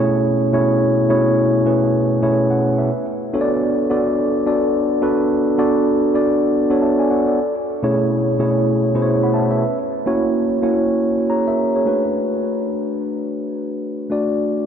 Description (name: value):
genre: R&B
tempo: 107 BPM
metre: 4/4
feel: swing 61% on 16ths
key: B dorian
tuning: A4 = 439 Hz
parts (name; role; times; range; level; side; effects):
- mellow tine electric piano; solo; 0.0-14.7 s; B2 to B5; -16 LUFS; equal; diffuse ambient delay
room: wet lush hall reverb, RT60 3.3 s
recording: dreamy mix soaked in reverb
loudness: -16 LUFS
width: side -8 dB against mid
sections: 0.0-11.9 A section; 11.9-14.7 B section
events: tine electric piano fill 11.0-11.9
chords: 0.0 Amaj7/B; 2.9 Bm7; 7.4 Amaj7/B; 9.6 F#7; 11.9 Bm7